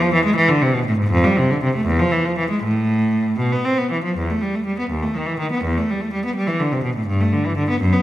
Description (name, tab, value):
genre	classical, baroque-style suite movement for unaccompanied cello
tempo	76-86 BPM (dotted quarters)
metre	6/8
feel	rubato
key	E minor from 4.1 s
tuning	A4 = 441 Hz
part	rich cello	solo	0.0-8.0 s	D#2 to C4	-17 LUFS	equal	none
room	wet recital hall reverb, RT60 1.4 s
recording	none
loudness	-17 LUFS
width	side -14 dB against mid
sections	0.0-4.1 A section; 4.1-8.0 A section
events	none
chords	none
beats	0.35 | 1.10 1.85 | 2.60 3.38 | 4.14 4.88 | 5.63 6.37 | 7.08 7.80